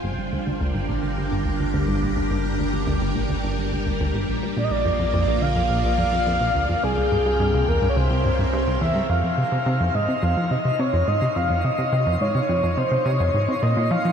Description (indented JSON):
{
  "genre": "ambient, sequencer-driven space music",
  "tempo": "106 BPM",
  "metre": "4/4",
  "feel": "straight",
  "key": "F minor from 9.1 s",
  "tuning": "A4 = 441 Hz",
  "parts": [
    { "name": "string machine, full ensemble", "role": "sustained chords", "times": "0.0-14.1 s", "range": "G3 to Ab5", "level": "-28 LUFS", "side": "equal", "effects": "phaser, ensemble chorus" },
    { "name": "plucky analog bass", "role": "riff", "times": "0.0-14.1 s", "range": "G1 to F3", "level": "-23 LUFS", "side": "equal", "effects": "analog delay" },
    { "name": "warm sub bass", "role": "bass", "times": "0.0-9.1 s", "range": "G1 to C2", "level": "-27 LUFS", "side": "equal", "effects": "none" },
    { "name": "breathy flute-like synth lead", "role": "melody", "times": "4.6-14.1 s", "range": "Ab4 to F5", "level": "-23 LUFS", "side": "equal", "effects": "analog chorus, analog delay" },
    { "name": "twinkling granular texture", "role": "texture", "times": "9.3-14.1 s", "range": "Eb4 to C6", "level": "-32 LUFS", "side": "equal", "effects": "built-in reverb" }
  ],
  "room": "moderate shimmer reverb, RT60 8.8 s",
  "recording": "none",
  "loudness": "-20 LUFS",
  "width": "side -7 dB against mid",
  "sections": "0.0-9.1 A section; 9.1-14.1 B section",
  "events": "filter sweep on analog synth bass 0.0-9.1",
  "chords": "0.0 Gm; 4.6 Bb; 6.8 C7; 9.1 Fm7"
}